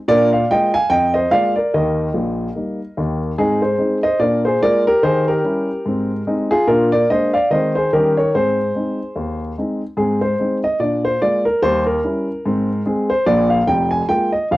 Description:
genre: jazz, stride piano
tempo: 146 BPM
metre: 4/4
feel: swing 58% on 8ths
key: Ab major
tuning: A4 = 440 Hz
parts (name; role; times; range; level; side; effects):
- warm grand piano; solo; 0.1-14.6 s; F1 to Ab5; -15 LUFS; equal; cassette tape
room: light reverb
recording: home recording on cassette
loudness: -15 LUFS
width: side -17 dB against mid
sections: 0.0-10.0 A section; 10.0-14.6 A section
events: none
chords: 0.1 Bb7; 1.7 Eb; 3.4 Ab; 4.2 Bb7; 5.0 Eb7b9; 5.9 Ab; 6.7 Bb7; 7.5 Ab/Eb; 7.9 Eb7; 8.3 Ab; 10.8 Bb7; 11.6 Eb7b9; 12.5 Ab; 13.3 Bb5

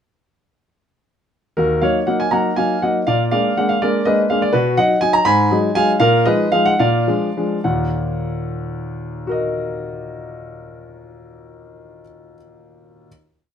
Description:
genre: classical-period piano sonatina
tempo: 68-85 BPM (dotted quarters)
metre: 6/8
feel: rubato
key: Eb minor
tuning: A4 = 440 Hz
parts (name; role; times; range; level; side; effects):
- warm grand piano; solo; 1.6-13.1 s; Eb2 to Cb6; -16 LUFS; equal; none
room: light reverb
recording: minimal, uncompressed stereo recording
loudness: -15 LUFS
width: side -8 dB against mid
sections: 1.6-7.6 A section; 7.6-10.9 final chord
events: slowing down 3.8-7.6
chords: 1.6 Ebm; 3.1 Bb7; 4.5 B; 5.3 Abm7; 6.0 Bb7sus4; 6.8 Bb7; 7.6 Ebm

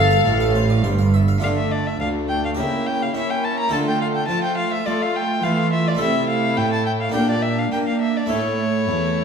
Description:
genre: classical, baroque-style concerto movement with solo episodes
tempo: 105 BPM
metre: 4/4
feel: straight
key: D minor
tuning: A4 = 440 Hz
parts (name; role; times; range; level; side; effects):
- rich chamber violin section; melody; 0.0-9.2 s; F4 to F5; -35 LUFS; left 7 dB; none
- rich violin; melody; 0.0-9.2 s; C#5 to A#5; -24 LUFS; left 3 dB; none
- rich chamber violin section; second line; 0.0-9.2 s; D4 to F5; -28 LUFS; left 1 dB; none
- dark chamber viola section; accompaniment; 0.0-9.2 s; A3 to A4; -25 LUFS; right 2 dB; none
- harpsichord; accompaniment; 0.0-9.2 s; D2 to F5; -26 LUFS; equal; none
- dark chamber cello section; bass; 0.0-9.2 s; D2 to C#4; -24 LUFS; right 3 dB; none
- rich chamber double bass section; bass; 0.0-1.4 s; G1 to A1; -20 LUFS; right 3 dB; none
room: wet recital hall reverb, RT60 1.3 s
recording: minimal, uncompressed stereo recording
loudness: -18 LUFS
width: side -6 dB against mid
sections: 0.0-1.4 A section; 1.4-9.2 B section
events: none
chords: 0.0 F; 1.4 Dm; 2.6 C#dim7; 3.7 Dm; 6.0 Am/C; 7.1 Gm/Bb; 8.3 A

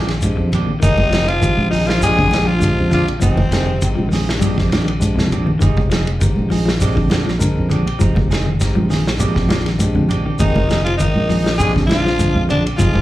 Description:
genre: afrobeat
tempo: 100 BPM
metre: 4/4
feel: straight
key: unclear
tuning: A4 = 438 Hz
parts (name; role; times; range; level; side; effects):
- raspy tenor saxophone; melody; 0.0-4.1, 10.4-13.0 s; C4 to Ab4; -20 LUFS; left 1 dB; slapback echo
- clear trombone section; second line; 0.0-4.1, 10.4-13.0 s; C3 to Ab3; -26 LUFS; left 1 dB; slapback echo
- overdriven tine electric piano; accompaniment; 0.0-13.0 s; Ab3 to Ab5; -28 LUFS; left 2 dB; slapback echo
- clean electric guitar; stabs; 0.0-13.0 s; Ab3 to Ab4; -26 LUFS; right 7 dB; slapback echo
- fingered electric bass; bass; 0.0-13.0 s; F1 to F2; -18 LUFS; equal; none
- clean electric guitar; arpeggios; 0.1-13.0 s; C3 to G3; -24 LUFS; left 4 dB; none
- vintage drum kit; drums; 0.1-13.0 s; hi-hat, kick drum, ride cymbal, snare drum; -21 LUFS; equal; none
- congas; percussion; 0.2-13.0 s; none; -24 LUFS; right 1 dB; none
- shekere; percussion; 0.2-12.9 s; none; -21 LUFS; equal; none
room: little or no reverb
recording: live gig heard through the venue's PA, club ambience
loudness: -14 LUFS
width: side -15 dB against mid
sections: 0.0-13.0 A section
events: tine electric piano fill 0.0-0.8; drum fill 5.2-5.6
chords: 0.0 Bb13; 0.8 Fm7; 2.0 Bb13; 3.2 Fm7; 4.4 Bb13; 5.6 Fm7; 6.8 Bb13; 8.0 Fm7; 9.2 Bb13; 10.4 Fm7; 11.6 Bb13

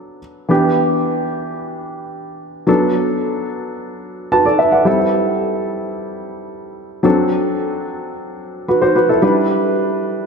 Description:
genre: pop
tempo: 110 BPM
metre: 4/4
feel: straight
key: unclear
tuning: A4 = 439 Hz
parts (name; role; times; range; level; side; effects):
- dark baby grand piano; solo; 0.0-10.3 s; E3 to A5; -15 LUFS; equal; ping-pong delay
room: wet plate reverb, RT60 2.7 s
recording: dreamy mix soaked in reverb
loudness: -14 LUFS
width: side -5 dB against mid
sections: 0.0-4.9 A section; 4.9-10.3 B section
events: grand piano fill 4.0-4.9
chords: 0.5 Em7; 2.7 D6; 4.9 Am7; 7.0 D7; 9.2 G6

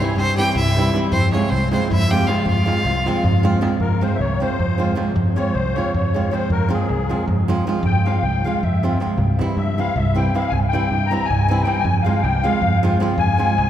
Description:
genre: balkan folk, Balkan wedding band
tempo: 313 BPM (eighths)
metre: 7/8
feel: straight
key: F harmonic minor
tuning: A4 = 441 Hz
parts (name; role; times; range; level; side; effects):
- clear fiddle; melody; 0.0-3.4 s; C5 to G5; -24 LUFS; right 1 dB; none
- musette accordion; second line; 0.0-13.7 s; C4 to Bb5; -24 LUFS; left 4 dB; none
- flamenco guitar; accompaniment; 0.0-13.5 s; E3 to F4; -22 LUFS; right 2 dB; none
- darbuka; percussion; 0.0-13.7 s; none; -22 LUFS; right 1 dB; none
- modern bright fingered electric bass; bass; 0.2-13.7 s; C2 to G2; -22 LUFS; equal; none
room: wet cathedral reverb, RT60 4.9 s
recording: recorded in a church or concert hall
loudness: -16 LUFS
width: side -11 dB against mid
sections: 0.0-3.8 A section; 3.8-13.7 B section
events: accordion solo 3.8-13.7; drum fill 8.2-9.2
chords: 0.0 C; 1.1 Fm; 9.2 C; 11.9 Fm

